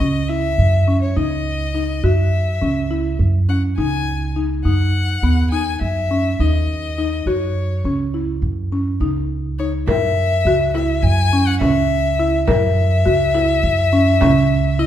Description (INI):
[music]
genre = contemporary instrumental, chamber music in an uneven meter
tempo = 207 BPM (eighths)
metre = 9/8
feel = straight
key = F# mixolydian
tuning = A4 = 440 Hz
[part]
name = rich violin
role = melody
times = 0.0-14.9 s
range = C#5 to G#5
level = -21 LUFS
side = left 4 dB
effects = none
[part]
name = buzzing marimba with medium mallets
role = arpeggios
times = 0.0-14.9 s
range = B3 to A#4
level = -21 LUFS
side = left 1 dB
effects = none
[part]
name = upright bass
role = bass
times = 0.0-14.9 s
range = C#2 to F#2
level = -18 LUFS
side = right 1 dB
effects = none
[part]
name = frame drum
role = percussion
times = 9.9-14.5 s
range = none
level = -27 LUFS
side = right 5 dB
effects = none
[sound]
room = wet recital hall reverb, RT60 1.3 s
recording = recorded in a church or concert hall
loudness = -15 LUFS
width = side -11 dB against mid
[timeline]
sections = 0.0-9.9 A section; 9.9-14.9 B section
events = none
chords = 0.0 F#5; 4.7 D#m; 7.3 F#5; 9.9 F#7